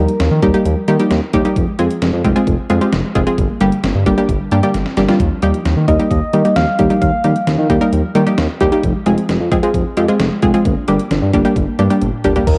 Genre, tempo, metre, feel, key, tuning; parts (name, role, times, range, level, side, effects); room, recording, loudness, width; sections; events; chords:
synth-pop; 132 BPM; 4/4; straight; Eb major; A4 = 439 Hz
soft struck synth lead; melody; 0.0-1.3, 5.9-7.9, 12.5-12.6 s; Bb4 to F5; -22 LUFS; equal; chorus, tape echo
analog pluck; accompaniment; 0.0-12.5 s; G3 to Bb4; -18 LUFS; equal; chorus, cassette tape
soft round pluck; arpeggios; 0.0-12.5 s; D3 to D4; -28 LUFS; equal
smooth synth bass; bass; 0.0-12.6 s; F1 to Eb3; -19 LUFS; equal
detuned 8-bit digital drum machine; drums; 0.1-12.6 s; crash cymbal, hi-hat, kick drum, snare drum, toms; -23 LUFS; equal; cassette tape
string machine, full ensemble; sustained chords; 12.6 s; Eb3 to G4; -31 LUFS; equal; ensemble chorus, cassette tape
light reverb; home recording on cassette; -15 LUFS; mono
0.0-12.5 A section
drum fill 4.7-5.2, 12.0-12.5
0.0 Ebadd9; 1.6 Fm; 3.4 Gm; 5.2 Ebadd9; 8.8 Fm; 10.7 Gm